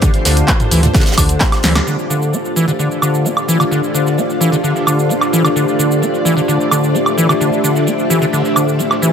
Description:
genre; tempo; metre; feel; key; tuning
acid house; 130 BPM; 4/4; straight; D minor; A4 = 442 Hz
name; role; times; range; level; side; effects
string machine, full ensemble; sustained chords; 0.0-9.1 s; A3 to D5; -19 LUFS; equal; ensemble chorus, sidechain pumping
acid bass, square; riff; 0.0-9.1 s; D3 to D4; -16 LUFS; equal; overdrive, wide subtle chorus, dub echo
crisp fusion drum kit; drums; 0.0-9.1 s; hi-hat, snare drum; -27 LUFS; right 3 dB; sidechain pumping on hats, high-pass filter on hats, low-pass filter on hats, high-pass filter on snare, low-pass filter on snare, high-pass filter on room, low-pass filter on room
electronic kick drum; drums; 0.0-1.5 s; none; -14 LUFS; equal; none
punchy analog drum machine; drums; 0.0-9.1 s; handclaps, hi-hat, shaker, snare drum, toms, woodblock; -18 LUFS; right 2 dB; none
ethereal airy pad; texture; 0.0-9.1 s; D4 to F5; -20 LUFS; left 1 dB; ensemble chorus, built-in reverb, sidechain pumping
warm sub bass; bass; 0.3-1.8 s; D2; -16 LUFS; equal; tube saturation, sidechain pumping
room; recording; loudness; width
moderate plate reverb, RT60 1.6 s; echo-heavy mix; -12 LUFS; side -7 dB against mid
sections
0.0-1.9 A section; 1.9-9.1 B section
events
drum fill 1.6; band accent 1.8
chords
0.0 Dm

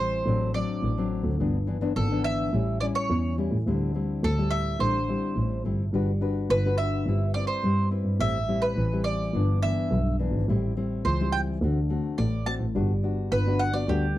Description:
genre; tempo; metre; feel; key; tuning
samba and choro; 106 BPM; 4/4; straight; G major; A4 = 441 Hz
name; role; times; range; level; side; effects
bowl-back mandolin; melody; 0.0-14.2 s; G4 to A5; -29 LUFS; right 2 dB; none
nylon-string guitar; accompaniment; 0.0-14.2 s; G2 to B4; -28 LUFS; left 4 dB; none
warm double bass; bass; 0.0-14.1 s; G1 to A2; -26 LUFS; right 1 dB; none
room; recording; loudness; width
light reverb; dry, close 1970s-style studio recording; -24 LUFS; side -14 dB against mid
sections
0.0-14.2 A section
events
none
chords
0.3 D7/A; 1.4 G6; 2.5 A7; 3.7 D9sus4; 5.9 Gmaj7; 7.1 Cmaj7/G; 8.2 Am7; 9.3 Em7/G; 10.5 Am7; 11.6 D7; 12.7 Gmaj7

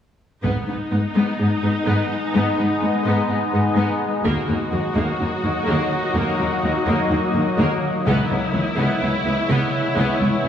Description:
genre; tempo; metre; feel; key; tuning
cinematic, hybrid orchestral and electronic film score; 126 BPM; 4/4; straight; unclear; A4 = 440 Hz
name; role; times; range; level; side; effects
warm symphonic viola section; accompaniment; 0.4-10.5 s; A#3 to F#4; -23 LUFS; equal; none
deep dark ambient pad; sustained chords; 1.3-10.5 s; F#3 to D#5; -24 LUFS; left 2 dB; chorus, built-in reverb
resonant blip pluck; arpeggios; 0.4-10.5 s; C#3 to G#4; -26 LUFS; left 1 dB; phaser, tape echo
dark symphonic cello section; bass; 0.4-10.5 s; C#2 to G#2; -24 LUFS; equal; none
solo taiko drums; drums; 0.4-1.4, 4.2-5.2, 8.1-9.0 s; none; -30 LUFS; equal; none
room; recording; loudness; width
wet scoring stage reverb, RT60 1.8 s; small room ambience; -18 LUFS; side -9 dB against mid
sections
0.4-10.5 A section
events
build-up 0.4-10.5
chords
0.4 G#m; 4.3 D#m; 8.1 C#m7

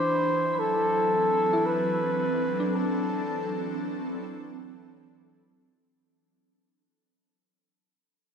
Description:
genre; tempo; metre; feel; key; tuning
ambient; free time; none; none; unclear; A4 = 440 Hz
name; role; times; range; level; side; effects
mellow flugelhorn; melody; 0.0-3.8 s; A4 to C5; -26 LUFS; equal; diffuse ambient delay
ethereal airy pad; sustained chords; 0.0-6.0 s; F#3 to A4; -31 LUFS; equal; ensemble chorus, built-in reverb, phaser
soft synth bell; arpeggios; 0.0-6.5 s; D4 to B5; -33 LUFS; left 1 dB; chorus, phaser, diffuse ambient delay
organ-like drone; drone; 0.0-6.1 s; E3 to E4; -37 LUFS; right 4 dB; ensemble chorus, built-in reverb
room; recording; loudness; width
wet plate reverb, RT60 3.6 s; dreamy mix soaked in reverb, cassette tape; -24 LUFS; side -7 dB against mid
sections
0.0-5.9 A section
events
fade-out 1.7-5.9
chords
0.0 D7

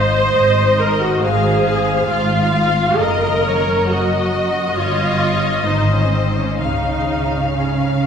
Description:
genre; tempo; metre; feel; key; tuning
classical, slow romantic movement for string orchestra; 62-71 BPM; 4/4; rubato; unclear; A4 = 440 Hz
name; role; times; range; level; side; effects
rich chamber violin section; melody; 0.0-8.1 s; C5 to F5; -24 LUFS; left 5 dB; none
rich chamber violin section; second line; 0.0-8.1 s; C5 to F5; -22 LUFS; left 1 dB; none
rich studio viola section; accompaniment; 0.0-8.1 s; C4 to C5; -18 LUFS; equal; none
dark chamber double bass section; bass; 0.0-8.1 s; Gb1 to Db2; -22 LUFS; right 1 dB; none
rich studio cello section; bass; 0.0-8.1 s; Gb2 to Db3; -22 LUFS; right 2 dB; none
room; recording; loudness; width
wet church reverb, RT60 2.8 s; recorded in a church or concert hall; -14 LUFS; side -7 dB against mid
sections
0.0-8.1 A section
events
none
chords
0.0 Ab; 1.2 Fm/Ab; 3.0 Ebm/Gb; 4.8 Eb7/G; 5.7 Ab; 6.6 Db

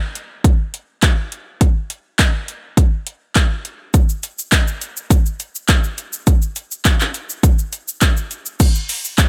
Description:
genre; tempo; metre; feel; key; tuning
pop; 103 BPM; 4/4; straight; none; none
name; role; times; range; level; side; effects
pop drum kit; drums; 0.2-9.3 s; crash cymbal, handclaps, hi-hat, kick drum, shaker; -16 LUFS; equal; overdrive
room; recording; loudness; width
little or no reverb; none; -18 LUFS; mono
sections
0.0-8.6 A section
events
none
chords
none

